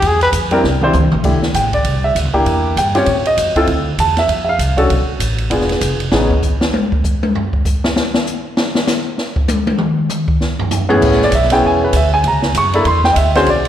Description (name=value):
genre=jazz, small-group swing and bop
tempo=196 BPM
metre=4/4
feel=swing 60% on 8ths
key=unclear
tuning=A4 = 441 Hz
part: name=upright bass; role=bass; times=0.0-6.3, 11.0-13.7 s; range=E1 to A2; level=-18 LUFS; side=equal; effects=none
part: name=open jazz drum kit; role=drums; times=0.0-13.7 s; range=crash cymbal, hi-hat, kick drum, ride cymbal, snare drum, toms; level=-17 LUFS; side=equal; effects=slapback echo
part: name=warm baby grand piano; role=accompaniment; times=0.5-6.3, 10.9-13.7 s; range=A2 to C#6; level=-14 LUFS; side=equal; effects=plate reverb, slapback echo
room=light reverb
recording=live gig heard through the venue's PA, recital hall reverb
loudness=-12 LUFS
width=side -11 dB against mid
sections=0.0-1.2 A section; 1.2-11.0 A section; 11.0-13.7 A section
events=drum fill 0.6-1.2; drum solo 6.1-11.0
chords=0.0 E7b9b13; 0.6 C9; 1.2 Fmaj13; 2.5 Em7b5; 3.1 Am; 3.7 Dm7; 4.9 Asus2; 5.5 E7b9; 6.1 Amaj9#11; 7.3 N.C.; 9.8 E; 11.0 Amaj9; 12.2 C#m; 12.9 D9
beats=| 0.03 0.33 0.64 0.94 | 1.25 1.55 1.85 2.16 | 2.46 2.77 3.07 3.38 | 3.68 3.99 4.29 4.60 | 4.90 5.21 5.51 5.82 | 6.12 6.43 6.74 7.04 | 7.35 7.65 7.96 8.27 | 8.57 8.88 9.18 9.49 | 9.79 10.10 10.41 10.71 | 11.02 11.32 11.63 11.94 | 12.24 12.55 12.86 13.16 | 13.47